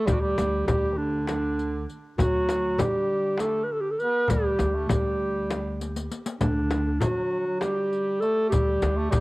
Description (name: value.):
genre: Turkish makam ensemble.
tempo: 199 BPM (eighths).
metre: 7/8.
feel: straight.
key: D makam hicaz.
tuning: A4 = 440 Hz.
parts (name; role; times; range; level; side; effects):
dark clarinet; melody; 0.0-9.2 s; D4 to B4-37c; -26 LUFS; equal; cassette tape, tape echo.
clear bass clarinet; second line; 0.0-9.2 s; D3 to B3-41c; -32 LUFS; right 2 dB; cassette tape.
upright bass; bass; 0.1-9.2 s; D2 to D3; -29 LUFS; equal; none.
darbuka; percussion; 0.1-9.2 s; none; -31 LUFS; left 1 dB; none.
frame drum; percussion; 0.1-9.2 s; none; -31 LUFS; left 3 dB; none.
riq; percussion; 0.1-9.2 s; none; -38 LUFS; left 3 dB; none.
room: light reverb, studio reverb.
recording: home recording on cassette.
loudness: -23 LUFS.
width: side -21 dB against mid.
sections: 0.0-9.2 A section.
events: drum fill 5.8-6.4.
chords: none.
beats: | 0.07 0.37 0.68 0.98 1.28 1.58 1.88 | 2.18 2.48 2.79 3.09 3.39 3.69 3.99 | 4.29 4.60 4.90 5.20 5.50 5.80 6.10 | 6.41 6.71 7.01 7.31 7.61 7.91 8.21 | 8.52 8.82 9.12.